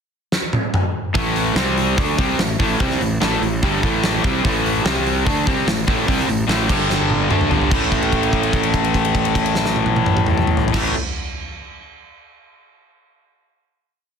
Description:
hard rock; 146 BPM; 4/4; straight; A minor; A4 = 442 Hz
big rock drum kit; drums; 0.3-10.8 s; crash cymbal, hi-hat, kick drum, snare drum, toms; -21 LUFS; equal
overdriven electric guitar; riff; 1.1-10.9 s; G2 to D4; -21 LUFS; left 12 dB
overdriven semi-hollow guitar; riff; 1.1-10.9 s; G2 to D4; -22 LUFS; right 15 dB
fuzz fingered electric bass; bass; 1.2-10.9 s; G1 to D2; -24 LUFS; equal; overdrive
light reverb; dense, heavily limited modern master; -16 LUFS; side -6 dB against mid
0.0-1.2 pickup bar; 1.2-7.7 riff; 7.7-11.0 final chord
drum fill 0.3-1.2, 6.9-7.7; held note 7.7-10.7
0.0 N.C.; 1.2 A5; 1.6 C5; 2.0 Am; 4.9 C5; 5.3 Am; 6.7 G5; 7.3 Gsus2; 7.7 A5
0.32 0.74 | 1.15 1.57 1.98 2.39 | 2.80 3.21 3.62 4.03 | 4.44 4.85 5.26 5.67 | 6.08 6.49 6.90 7.31 | 7.72 8.12 8.54 8.95 | 9.35 9.76 10.17 10.58

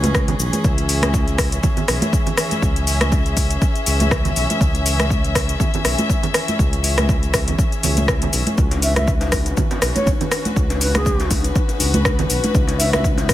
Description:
afro house; 121 BPM; 4/4; swing 56% on 16ths; C# minor; A4 = 439 Hz
warm chamber string section; sustained chords; 0.0-13.3 s; E3 to E5; -25 LUFS; left 2 dB; sidechain pumping
smooth synth bass; bass; 0.0-13.3 s; B1 to C#2; -21 LUFS; equal; sidechain pumping
afro-pop drum kit; drums; 0.0-13.3 s; cabasa, hi-hat, rim click; -22 LUFS; left 1 dB
congas; percussion; 0.0-13.2 s; -25 LUFS; right 2 dB
electronic kick drum; drums; 0.1-13.3 s; -19 LUFS; equal; overdrive
djembe; percussion; 8.7-13.3 s; -27 LUFS; left 2 dB
bright reedy bass bansuri; melody; 8.8-13.1 s; G#4 to E5; -26 LUFS; right 1 dB; dub echo
small room reverb; -16 LUFS; side -14 dB against mid
0.0-13.3 A section
0.0 C#m7
0.15 | 0.65 1.14 1.64 2.13 | 2.63 3.12 3.62 4.12 | 4.61 5.11 5.60 6.10 | 6.59 7.09 7.59 8.08 | 8.58 9.07 9.57 10.07 | 10.56 11.06 11.55 12.05 | 12.55 13.04

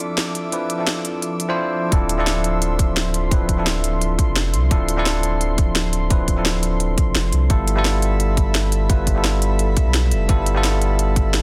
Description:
liquid drum and bass; 172 BPM; 4/4; swing 53% on 16ths; D dorian; A4 = 440 Hz
bell-like tine electric piano; accompaniment; 0.0-11.4 s; F3 to C5; -26 LUFS; equal
airy breathy pad; sustained chords; 0.0-11.4 s; F3 to D6; -32 LUFS; equal; chorus
sub bass with octave; bass; 0.0-11.4 s; D1 to C2; -23 LUFS; equal; high-pass filter
drum and bass drum kit; drums; 0.0-11.4 s; hi-hat, snare drum; -25 LUFS; equal; small room ambience
electronic kick drum; drums; 1.9-11.2 s; -20 LUFS; equal; small room ambience
light reverb; dense, heavily limited modern master; -19 LUFS; mono
0.0-1.9 A section; 1.9-11.4 B section
build-up 0.0-1.9; filter sweep on tine electric piano 0.0-1.9; drop 1.9-11.4
0.0 Dm9; 7.5 G13
0.18 | 0.53 0.87 1.22 1.57 | 1.92 2.27 2.62 2.97 | 3.31 3.66 4.01 4.36 | 4.71 5.06 5.41 5.76 | 6.11 6.46 6.80 7.15 | 7.50 7.85 8.20 8.55 | 8.90 9.25 9.59 9.94 | 10.29 10.64 10.99 11.34

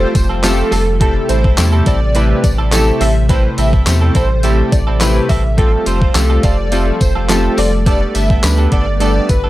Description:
dance-pop; 105 BPM; 4/4; straight; A minor; A4 = 439 Hz
airy dreamy lead; melody; 0.0-9.4 s; A4 to E5; -21 LUFS; equal; chorus
chorused retro synth keys; accompaniment; 0.0-9.4 s; A3 to B4; -19 LUFS; equal; tremolo, sidechain pumping
ensemble organ-string; sustained chords; 0.0-9.5 s; C3 to B3; -22 LUFS; left 1 dB; ensemble chorus, sidechain pumping
direct-recorded clean electric guitar; riff; 0.0-9.5 s; G3 to A4; -24 LUFS; right 4 dB; analog chorus
warm sub bass; bass; 0.0-9.5 s; F1 to E2; -15 LUFS; equal; sidechain pumping
detuned 8-bit digital drum machine; drums; 0.1-9.4 s; handclaps, hi-hat, kick drum, snare drum; -15 LUFS; equal; overdrive
tambourine; percussion; 0.1-9.4 s; -27 LUFS; left 2 dB
little or no reverb; dry, gritty hardware recording; -11 LUFS; side -16 dB against mid
0.0-9.5 A section
0.0 Fadd9; 1.0 Am7; 5.6 Fadd9; 7.9 Gadd9
0.44 | 1.01 1.58 2.15 2.72 | 3.29 3.87 4.44 5.01 | 5.58 6.15 6.72 7.29 | 7.87 8.44 9.01

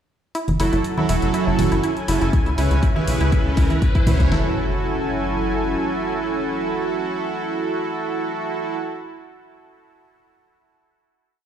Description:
progressive house; 121 BPM; 4/4; straight; F# minor; A4 = 439 Hz
lush unison pad; sustained chords; 0.9-8.8 s; C#3 to G#5; -27 LUFS; left 1 dB; chorus, sidechain pumping
wide unison pluck; arpeggios; 0.3-4.5 s; E4; -27 LUFS; right 1 dB; sidechain pumping, dub echo
electronic hi-hat; drums; 0.3-4.3 s; -35 LUFS; equal; high-pass filter on hats, high-pass filter on room
riser and impact; sound effects; 1.9-8.8 s; -32 LUFS; left 1 dB
tight sequencer bass; bass; 0.5-5.8 s; E1 to C#2; -22 LUFS; left 1 dB; tube saturation, sidechain pumping
congas; percussion; 0.5-4.2 s; -26 LUFS; right 1 dB; sidechain pumping on perc
soft supersaw; stabs; 0.6-8.8 s; C#3 to B4; -24 LUFS; right 3 dB; sidechain pumping, dub echo
pop drum kit; drums; 2.3-4.4 s; kick drum, snare drum; -18 LUFS; left 1 dB
light reverb, digital ambience; played on a big sound system in a bare room, stone room reverb; -18 LUFS; side -9 dB against mid
0.3-4.3 build; 4.3-8.3 final chord
build-up 0.3-4.3; riser 1.9-4.3; drum fill 2.3-4.3
0.3 F#m7; 2.3 C#m7; 4.3 F#m7
| 0.35 0.85 1.34 1.84 | 2.33 2.83 3.33 3.82 | 4.32 4.81 5.31 5.80 | 6.30 6.80 7.29 7.79

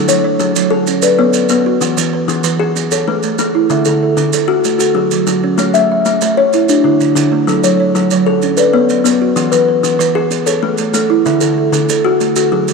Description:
southern african traditional, mbira-style interlocking cycle; 127 BPM (dotted quarters); 12/8; straight; A major; A4 = 439 Hz
kalimba; arpeggios; 0.0-12.7 s; D3 to E5; -13 LUFS; left 7 dB
kalimba; arpeggios; 0.0-12.7 s; D3 to F#5; -15 LUFS; right 11 dB
maracas; percussion; 0.1-12.7 s; -22 LUFS; right 12 dB
moderate plate reverb, RT60 3.5 s; 1960s-style stereo with parts hard left and right; -11 LUFS; side -4 dB against mid
0.0-12.7 A section
0.0 F#m; 0.9 Bm; 1.8 E; 2.8 A; 3.7 D; 4.6 F#m; 5.6 A; 6.5 D; 7.5 F#m; 8.4 Bm; 9.4 E; 10.3 A; 11.3 D; 12.2 F#m
0.40 0.87 1.34 | 1.81 2.28 2.75 3.23 | 3.70 4.17 4.64 5.11 | 5.58 6.06 6.53 7.00 | 7.47 7.95 8.42 8.89 | 9.37 9.84 10.32 10.79 | 11.26 11.74 12.21 12.69

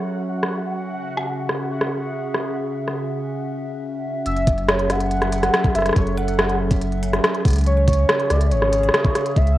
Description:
IDM; 141 BPM; 4/4; straight; A4 = 441 Hz
warbly tape-like pad; sustained chords; 0.0-9.6 s; C#3 to E5; -26 LUFS; right 1 dB; chorus, built-in reverb
bubbling stepped-filter texture; texture; 0.0-4.3 s; F#4 to F#5; -33 LUFS; equal; chorus, built-in reverb
industrial drum kit; drums; 0.4-9.6 s; hi-hat, rim click; -22 LUFS; equal; low-pass filter on hats, low-pass filter on snare, low-pass filter on toms, low-pass filter on room
warm velvety synth lead; melody; 4.3-9.6 s; C#5 to F#5; -23 LUFS; equal; chorus, cassette tape, tape echo
warm sub bass; bass; 4.3-9.6 s; F#1 to C#2; -21 LUFS; equal
electronic kick drum; drums; 4.5-9.5 s; -18 LUFS; equal
moderate spring reverb, RT60 1.4 s, digital ambience; home recording on cassette; -18 LUFS; side -15 dB against mid
0.0-4.3 A section; 4.3-9.6 B section
filter sweep on drum 0.0-4.3
0.0 F#m7; 0.9 C#m; 4.3 F#m7; 7.7 C#m
0.00 0.43 | 0.85 1.28 1.71 2.13 | 2.56 2.98 3.41 3.83 | 4.26 4.68 5.11 5.54 | 5.96 6.39 6.81 7.24 | 7.66 8.09 8.52 8.94 | 9.37

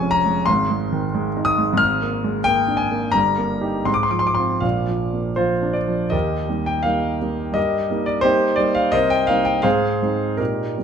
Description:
classical, romantic character piece for solo piano; 76-92 BPM; 2/4; rubato; Eb major; A4 = 442 Hz
warm concert grand piano; solo; 0.0-10.8 s; F1 to F6; -18 LUFS; equal
moderate recital hall reverb, RT60 1.4 s; close, detailed microphones; -18 LUFS; side -7 dB against mid
0.0-6.1 A section; 6.1-10.8 B section
0.5 Ab; 1.8 Bb7/Ab; 3.1 Eb/G; 3.9 Fm/Ab; 4.6 Bb; 6.1 Eb; 7.6 Eb/G; 8.9 Cm7; 9.7 Fm7/Ab
| 0.47 1.14 | 1.80 2.46 | 3.14 3.86 | 4.63 5.39 | 6.13 6.87 | 7.57 8.24 | 8.93 9.65 | 10.39

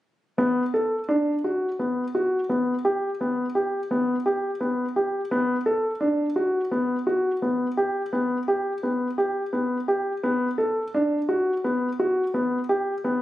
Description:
contemporary instrumental, contemporary; 171 BPM (eighths); 7/8; straight; A4 = 440 Hz
dark concert grand piano; solo; 0.4-13.2 s; B3 to A4; -22 LUFS; equal
moderate studio ambience, RT60 0.5 s; recorded on a phone in the room, studio reverb; -22 LUFS; side -14 dB against mid
0.4-13.2 A section
| 0.38 0.73 1.09 1.44 1.79 2.15 2.50 | 2.85 3.20 3.56 3.91 4.26 4.61 4.96 | 5.32 5.67 6.02 6.37 6.72 7.07 7.42 | 7.78 8.13 8.48 8.83 9.18 9.53 9.88 | 10.23 10.58 10.93 11.29 11.64 11.99 12.34 | 12.69 13.04

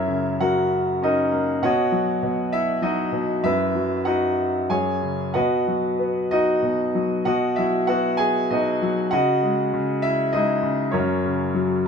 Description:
classical, lyrical solo piano; 97 BPM; 3/4; uneven beats, rubato; B major; A4 = 440 Hz
bright concert grand piano; solo; 0.0-11.9 s; F#2 to G#5; -20 LUFS; equal
moderate small room ambience, RT60 0.5 s; minimal, uncompressed stereo recording; -19 LUFS; side -6 dB against mid
0.0-11.9 A section
grand piano fill 11.6-11.9
0.0 F#; 1.6 Badd9; 3.4 B/F#; 4.7 F#5; 5.3 B; 7.3 G#m7/B; 9.1 C#madd9; 10.9 F#
0.38 1.01 | 1.62 2.22 2.83 | 3.44 4.06 4.70 | 5.35 6.00 6.63 | 7.25 7.88 8.50 | 9.12 9.73 10.33 | 10.93 11.55

